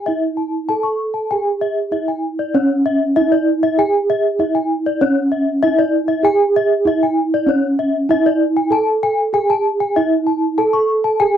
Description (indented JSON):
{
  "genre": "gamelan",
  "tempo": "97 BPM",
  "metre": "4/4",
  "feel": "straight",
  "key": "unclear",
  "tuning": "A4 = 439 Hz",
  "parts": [
    { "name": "gamelan-type bronze metallophone", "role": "melody", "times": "0.0-11.4 s", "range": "C#4 to A4-20c", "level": "-16 LUFS", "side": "right 3 dB", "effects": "none" },
    { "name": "gamelan-type bronze metallophone", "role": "arpeggios", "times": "0.0-11.3 s", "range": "C#5 to C#6", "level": "-19 LUFS", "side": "left 6 dB", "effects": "none" }
  ],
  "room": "light reverb",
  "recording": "dry, close 1970s-style studio recording",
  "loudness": "-14 LUFS",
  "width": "side -9 dB against mid",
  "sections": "0.0-2.5 A section; 2.5-11.4 A section",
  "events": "none",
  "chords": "none"
}